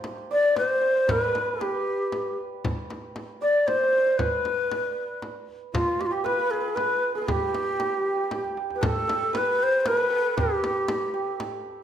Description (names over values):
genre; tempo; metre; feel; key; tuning
Persian modal ensemble; 116 BPM; 3/4; straight; G dastgah homayun, G dastgah mahur from 8.8 s; A4 = 439 Hz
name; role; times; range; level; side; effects
santur; second line; 0.0-11.8 s; Eb4 to D5; -31 LUFS; right 6 dB; none
frame drum; percussion; 0.0-11.5 s; none; -32 LUFS; left 2 dB; none
tombak; percussion; 0.0-11.7 s; none; -36 LUFS; right 2 dB; none
breathy bright low ney; melody; 0.3-11.4 s; F4 to D5; -23 LUFS; left 1 dB; none
room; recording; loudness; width
wet recital hall reverb, RT60 1.2 s; none; -22 LUFS; side -9 dB against mid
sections
0.0-8.8 A section; 8.8-11.8 B section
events
drum fill 8.3-8.8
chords
none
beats
0.03 0.55 | 1.07 1.59 2.11 | 2.63 3.14 3.66 | 4.18 4.70 5.21 | 5.73 6.25 6.76 | 7.28 7.79 8.31 | 8.83 9.34 9.85 | 10.37 10.88 11.39